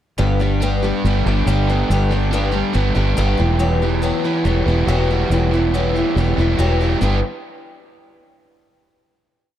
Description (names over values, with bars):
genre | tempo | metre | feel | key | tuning
rock | 141 BPM | 4/4 | straight | G major | A4 = 442 Hz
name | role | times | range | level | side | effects
picked old ladder-braced acoustic guitar | accompaniment | 0.2-7.2 s | G2 to G4 | -22 LUFS | left 3 dB | none
raw garage guitar | riff | 0.2-7.2 s | E2 to G4 | -21 LUFS | right 1 dB | overdrive
fingered electric bass | bass | 0.2-7.2 s | E1 to G1 | -18 LUFS | equal | none
room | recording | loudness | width
light reverb, small room ambience | dark, warm production | -15 LUFS | side -11 dB against mid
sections
0.2-7.0 verse; 7.0-8.7 final chord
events
none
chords
0.2 G; 3.4 Emadd9; 7.0 G